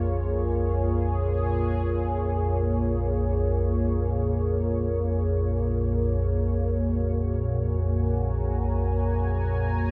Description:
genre	dark ambient drone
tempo	free time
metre	none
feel	none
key	Bb minor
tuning	A4 = 440 Hz
part	sweeping resonant pad	sustained chords	0.0-9.9 s	Bb3 to Bb5	-31 LUFS	equal	chorus
part	deep rumbling drone	drone	0.0-9.9 s	Bb1 to F2	-27 LUFS	equal	built-in reverb, phaser, subtle chorus
room	moderate plate reverb, RT60 3.0 s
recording	none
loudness	-26 LUFS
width	mono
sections	0.0-9.9 A section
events	none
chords	0.0 Bbm; 6.4 Gb/Bb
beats	free time

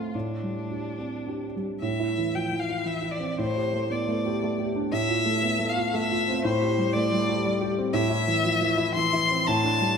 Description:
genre	neoclassical piano and strings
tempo	117 BPM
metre	3/4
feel	rubato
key	A minor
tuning	A4 = 440 Hz
part	rich violin	melody	0.0-10.0 s	D4 to C6	-27 LUFS	left 4 dB	none
part	dark concert grand piano	accompaniment	0.0-10.0 s	A2 to A4	-26 LUFS	right 1 dB	wide subtle chorus
room	wet lush hall reverb, RT60 2.5 s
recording	dreamy mix soaked in reverb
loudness	-23 LUFS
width	side -6 dB against mid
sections	0.0-1.8 A section; 1.8-10.0 B section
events	none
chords	0.1 Csus2/A; 1.8 A5; 3.4 Gsus2/A; 4.9 F/A; 6.4 Csus2/A; 7.9 Am; 9.5 Gsus2/A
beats	| 0.14 0.70 1.27 | 1.83 2.35 2.86 | 3.38 3.90 4.41 | 4.92 5.42 5.93 | 6.44 6.94 7.44 | 7.94 8.44 8.95 | 9.46

